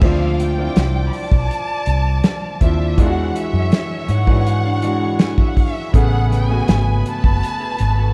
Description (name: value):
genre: lush 1970s-style soul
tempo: 81 BPM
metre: 4/4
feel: straight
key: unclear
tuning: A4 = 440 Hz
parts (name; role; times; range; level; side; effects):
- warm studio violin section; melody; 0.0-8.1 s; E5 to B5; -28 LUFS; equal; none
- warm studio violin section; second line; 0.0-8.1 s; B4 to D6; -33 LUFS; equal; none
- clear concert grand piano; accompaniment; 0.0-8.1 s; C#3 to G#4; -26 LUFS; equal; none
- vintage muted fingered electric bass; bass; 0.0-8.1 s; F#1 to G#2; -21 LUFS; equal; none
- warm soul drum kit; drums; 0.0-8.0 s; crash cymbal, hi-hat, kick drum, snare drum; -19 LUFS; equal; none
- electric guitar through a small old amp; riff; 4.1-8.1 s; D4 to C#5; -33 LUFS; equal; analog chorus
room: moderate concert hall reverb, RT60 2.5 s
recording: dark, warm production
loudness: -17 LUFS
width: mono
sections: 0.0-8.1 A section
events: none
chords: 0.0 Dm9; 3.0 E9; 5.9 Amaj9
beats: | 0.01 0.76 1.50 2.24 | 2.98 3.72 4.46 5.20 | 5.94 6.68 7.42